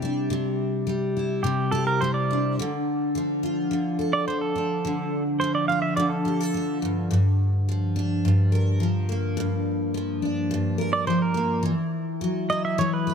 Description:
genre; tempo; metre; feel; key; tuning
acoustic pop; 106 BPM; 4/4; straight; unclear; A4 = 438 Hz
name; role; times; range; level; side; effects
picked steel-string acoustic guitar; accompaniment; 0.0-13.1 s; G2 to B4; -23 LUFS; left 1 dB; double-tracked left and right
pedal steel guitar; second line; 1.4-6.8, 10.9-13.1 s; G4 to F5; -26 LUFS; right 4 dB; none
room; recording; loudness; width
light reverb, studio ambience; none; -22 LUFS; side -7 dB against mid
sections
0.0-13.1 A section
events
none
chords
0.0 Cadd9; 2.6 Dm; 6.8 Gm7; 11.6 Esus2

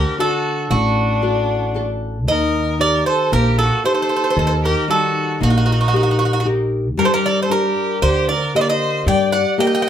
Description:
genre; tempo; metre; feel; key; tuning
greek folk, Greek bouzouki band; 115 BPM (eighths); 9/8; straight; unclear; A4 = 437 Hz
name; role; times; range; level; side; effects
Greek bouzouki; melody; 0.0-9.9 s; F#4 to G5; -19 LUFS; right 2 dB; none
clear violin; second line; 0.0-9.9 s; D4 to Eb5; -23 LUFS; left 2 dB; none
nylon-string guitar; accompaniment; 0.0-9.9 s; D3 to Bb4; -20 LUFS; left 2 dB; none
upright bass; bass; 0.0-9.4 s; A1 to G2; -20 LUFS; equal; none
room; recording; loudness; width
wet studio reverb, RT60 0.5 s; heard from further back in the room; -15 LUFS; side -9 dB against mid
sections
0.0-9.9 A section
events
none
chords
0.0 D; 2.3 Eb; 7.0 Gm

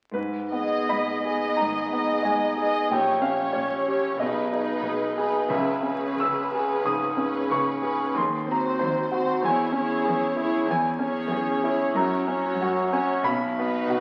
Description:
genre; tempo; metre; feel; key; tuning
classical; 93 BPM; 4/4; rubato; G# minor; A4 = 438 Hz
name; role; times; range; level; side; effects
clear grand piano; melody; 0.1-14.0 s; Bb1 to E6; -27 LUFS; equal; none
rich studio cello section; bass; 0.1-14.0 s; Eb2 to C#3; -38 LUFS; equal; none
warm studio violin section; melody; 0.5-14.0 s; B4 to D#5; -32 LUFS; equal; none
rich studio viola section; accompaniment; 0.5-14.0 s; B3 to G#4; -33 LUFS; equal; none
room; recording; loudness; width
wet scoring stage reverb, RT60 1.8 s; very old 78 rpm record, vinyl crackle; -25 LUFS; mono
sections
0.1-14.0 A section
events
none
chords
0.1 G#m; 2.9 Gdim/Bb; 4.2 G#m/B; 5.5 C#m7; 8.2 Cdim/Eb; 9.4 C#m/E; 12.0 F#; 13.2 B

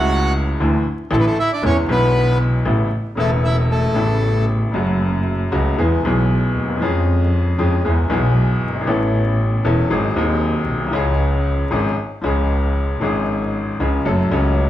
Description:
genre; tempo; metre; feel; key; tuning
tango; 116 BPM; 4/4; rubato; A major, F# minor from 4.7 s; A4 = 440 Hz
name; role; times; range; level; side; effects
bandoneon; melody; 0.0-4.5 s; A3 to F#5; -20 LUFS; equal; none
bright upright piano; accompaniment; 0.0-14.7 s; D#1 to A4; -19 LUFS; left 1 dB; none
clear double bass; bass; 0.0-14.7 s; E1 to E#2; -19 LUFS; equal; none
room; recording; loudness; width
wet large studio reverb, RT60 0.9 s; heard from further back in the room, vinyl crackle; -16 LUFS; side -12 dB against mid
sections
0.0-4.7 A section; 4.7-14.7 B section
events
none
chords
0.0 Amaj7/C#; 0.6 Dsus2; 1.6 E7; 2.7 Aadd9; 4.7 F#m; 5.8 E; 6.8 C#/E#; 7.8 E; 8.9 Aadd9; 9.9 G#7; 10.9 C#; 14.1 F#m

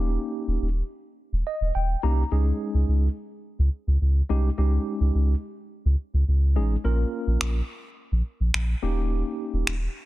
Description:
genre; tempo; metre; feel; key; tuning
dance-pop; 106 BPM; 4/4; straight; unclear; A4 = 438 Hz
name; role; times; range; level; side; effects
mellow tine electric piano; accompaniment; 0.0-9.7 s; Ab3 to Bb5; -30 LUFS; equal; medium stereo tremolo
saturated sub bass; bass; 0.0-9.9 s; Eb1 to Db2; -22 LUFS; equal; none
electronic finger snaps; drums; 7.4-9.8 s; none; -30 LUFS; equal; soft clipping on snare
room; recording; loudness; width
little or no reverb; dense, heavily limited modern master; -22 LUFS; side -17 dB against mid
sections
0.0-10.1 A section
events
tine electric piano fill 1.2-2.3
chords
0.0 Eb7; 2.3 Dbsus2; 6.8 Bbm; 8.8 Eb7

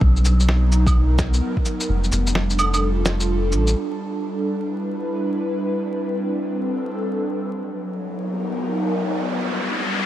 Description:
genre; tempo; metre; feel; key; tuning
future garage; 128 BPM; 4/4; swing 63% on 16ths; unclear; A4 = 440 Hz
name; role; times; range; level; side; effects
airy breathy pad; sustained chords; 0.0-10.1 s; F#3 to B4; -24 LUFS; equal; chorus, sidechain pumping
soft dub sub bass; bass; 0.0-3.7 s; F1 to B1; -18 LUFS; equal; sidechain pumping
electronic kick drum; drums; 0.0-1.6 s; none; -20 LUFS; equal; none
electronic shaker, cabasa, snare drum and claves; drums; 0.2-3.7 s; none; -24 LUFS; right 1 dB; none
riser; sound effects; 8.1-10.1 s; none; -26 LUFS; left 2 dB; none
room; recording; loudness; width
light reverb; vinyl crackle; -19 LUFS; side -13 dB against mid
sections
0.0-3.8 A section; 3.8-10.1 B section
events
break 1.9-3.8; riser 8.1-10.1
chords
0.0 Bmaj7; 1.9 F69; 3.8 Em7; 5.6 Am11; 7.5 Bmaj7; 9.4 Fsus2 (rootless)

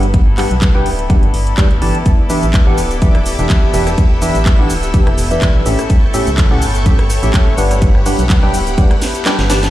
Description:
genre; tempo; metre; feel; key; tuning
piano house; 125 BPM; 4/4; swing 54% on 16ths; unclear; A4 = 438 Hz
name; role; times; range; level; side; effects
percussive organ stab; riff; 0.0-9.7 s; A2 to A5; -18 LUFS; equal; wide subtle chorus, sidechain pumping, ping-pong delay
organ-like FM bass; bass; 0.0-9.7 s; D1 to D2; -17 LUFS; equal; sidechain pumping
house drum kit; drums; 0.0-9.7 s; cabasa, handclaps, hi-hat, rim click, snare drum; -22 LUFS; equal; none
warm studio string section; texture; 0.0-9.7 s; B3 to D5; -23 LUFS; left 2 dB; sidechain pumping
electronic kick drum; drums; 0.1-8.9 s; none; -11 LUFS; equal; none
string machine, violins; sustained chords; 2.1-9.7 s; G4 to E6; -24 LUFS; right 1 dB; ensemble chorus, sidechain pumping
room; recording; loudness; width
little or no reverb; played on a big sound system in a bare room, stone room reverb; -10 LUFS; side -14 dB against mid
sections
0.0-9.7 A section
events
drum fill 9.0-9.7; kick drops out 9.3-9.7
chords
0.0 Gmaj7; 5.7 A7; 7.6 Gmaj7

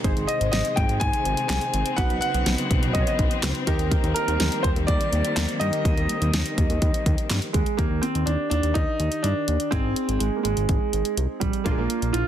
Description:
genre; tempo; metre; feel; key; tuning
synth-pop; 124 BPM; 4/4; straight; Eb major; A4 = 440 Hz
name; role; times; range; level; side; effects
warm analog keys; accompaniment; 0.0-12.3 s; Eb3 to C5; -32 LUFS; right 1 dB; chorus
warm studio string section; sustained chords; 0.0-7.7 s; C3 to C4; -30 LUFS; left 2 dB; none
fat analog bass; bass; 0.0-12.2 s; Ab1 to G2; -25 LUFS; equal; none
pop drum kit; drums; 0.0-12.3 s; handclaps, hi-hat, kick drum, snare drum; -25 LUFS; equal; none
warm baby grand piano; melody; 0.3-12.3 s; G3 to Ab5; -26 LUFS; right 1 dB; ping-pong delay
room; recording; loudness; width
little or no reverb; dense, heavily limited modern master; -21 LUFS; side -10 dB against mid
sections
0.0-7.8 A section; 7.8-12.3 B section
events
none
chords
0.0 Ab; 2.0 Badd9; 3.7 Eb; 7.8 Ebmaj7; 9.7 Ab; 11.7 Bb

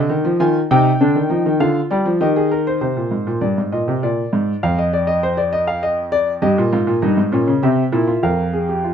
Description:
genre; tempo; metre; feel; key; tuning
classical, baroque-style 3-part fugue for grand piano; 99 BPM; 3/4; straight; Ab major; A4 = 438 Hz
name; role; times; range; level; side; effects
warm grand piano; solo; 0.0-8.9 s; F2 to Ab5; -15 LUFS; equal; none
room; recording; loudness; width
light reverb; none; -15 LUFS; side -8 dB against mid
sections
0.0-2.8 A section; 2.8-8.9 B section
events
none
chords
0.4 Fm7/Eb; 1.0 Dmadd11; 2.2 Eb; 2.8 Ab; 4.0 Bb7; 4.6 F5; 5.8 Dm/F; 6.4 Gdim; 7.6 C7; 8.2 Fm

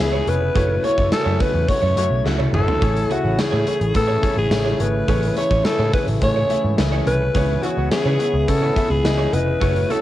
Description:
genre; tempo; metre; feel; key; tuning
1980s-style pop; 106 BPM; 4/4; straight; C# minor; A4 = 440 Hz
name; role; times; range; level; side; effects
raspy alto saxophone; melody; 0.0-10.0 s; F#4 to C#5; -21 LUFS; left 1 dB; cassette tape, tape echo, plate reverb
clear concert grand piano; accompaniment; 0.0-10.0 s; A2 to E5; -27 LUFS; left 7 dB; cassette tape, plate reverb
brassy analog pad; sustained chords; 0.0-10.0 s; C#3 to E4; -28 LUFS; right 1 dB; chorus, cassette tape
direct-recorded clean electric guitar; riff; 0.0-10.0 s; A3 to C#5; -29 LUFS; right 8 dB; ensemble chorus, cassette tape
vintage muted picked electric bass; bass; 0.0-9.8 s; E#1 to C#3; -21 LUFS; right 1 dB; none
gated 80s drum kit; drums; 0.3-10.0 s; hi-hat, kick drum, snare drum, tambourine, toms; -23 LUFS; equal; cassette tape
room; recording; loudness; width
moderate booth ambience, RT60 0.2 s; home recording on cassette; -16 LUFS; side -14 dB against mid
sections
0.0-10.0 A section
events
drum fill 2.3-2.8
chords
0.0 C#m7; 0.6 F#m7; 2.8 Amaj7; 7.3 C#m7

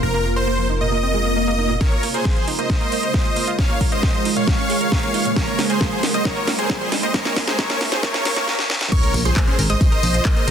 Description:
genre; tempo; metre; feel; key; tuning
uplifting trance; 135 BPM; 4/4; straight; Bb minor; A4 = 440 Hz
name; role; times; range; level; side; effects
big supersaw lead; melody; 0.0-10.5 s; Ab4 to F5; -22 LUFS; equal; sidechain pumping, digital delay
shimmering ambient pad; sustained chords; 0.0-10.5 s; C3 to Bb4; -26 LUFS; right 2 dB; chorus, built-in reverb, vintage 12-bit sampler grit, sidechain pumping
analog pluck; arpeggios; 0.0-10.5 s; Bb2 to Bb4; -29 LUFS; right 4 dB; chorus, sidechain pumping, digital delay
solid FM bass; bass; 0.0-1.8, 9.1-10.5 s; F1 to Bb1; -22 LUFS; equal; tube saturation, sidechain pumping
swell, riser and impact; sound effects; 1.1-10.5 s; none; -29 LUFS; left 1 dB; none
electronic kick drum; drums; 1.8-10.3 s; none; -19 LUFS; equal; none
house drum kit; drums; 1.8-10.5 s; crash cymbal, handclaps, hi-hat, ride cymbal, snare drum, tambourine; -24 LUFS; equal; soft clipping on snare, sidechain pumping on hats, sidechain pumping on cymbals, sidechain pumping on perc
wide unison pluck; second line; 8.9-10.5 s; C6 to Eb6; -31 LUFS; right 1 dB; sidechain pumping, digital delay
room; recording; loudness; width
light reverb; dense, heavily limited modern master, high-pass filter; -17 LUFS; side -8 dB against mid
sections
0.0-1.8 A section; 1.8-8.9 B section; 8.9-10.5 C section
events
swell 1.1-1.8; build-up 1.8-8.9; drum fill 1.8-8.5, 8.5-8.9; filter sweep 1.8-8.9; riser 4.1-8.5; drop 8.9-10.5; impact 8.9-10.5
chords
0.0 Fsus4; 1.8 Bbm7

